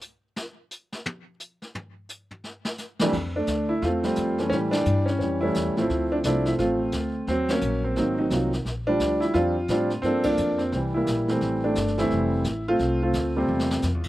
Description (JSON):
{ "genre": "jazz piano trio", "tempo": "174 BPM", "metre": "4/4", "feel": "swing 62% on 8ths", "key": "F major", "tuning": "A4 = 440 Hz", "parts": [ { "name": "jazz brush drum kit", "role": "drums", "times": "0.0-14.1 s", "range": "brushed snare drum, crash cymbal, hi-hat, kick drum, ride cymbal, snare drum, toms", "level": "-33 LUFS", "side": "equal", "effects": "none" }, { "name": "warm upright piano", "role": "melody", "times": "3.0-14.0 s", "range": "F2 to A4", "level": "-23 LUFS", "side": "equal", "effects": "none" }, { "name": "upright bass", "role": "bass", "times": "3.0-14.1 s", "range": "F1 to A2", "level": "-29 LUFS", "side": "equal", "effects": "none" } ], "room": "little or no reverb", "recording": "recorded outdoors, with no room sound", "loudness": "-22 LUFS", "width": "side -16 dB against mid", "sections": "0.0-3.1 A section; 3.1-14.1 B section", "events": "upright piano solo 0.0-3.1; drum solo 0.0-3.1; band accent 4.7, 7.5, 10.2; drum fill 13.5-13.8", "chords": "0.4 N.C.; 3.1 Fmaj7; 4.5 A7; 5.9 Dm7; 7.3 Ebm7; 8.0 Ab9; 8.7 Bb69; 10.0 Gm7; 10.7 C7; 11.4 Fmaj7" }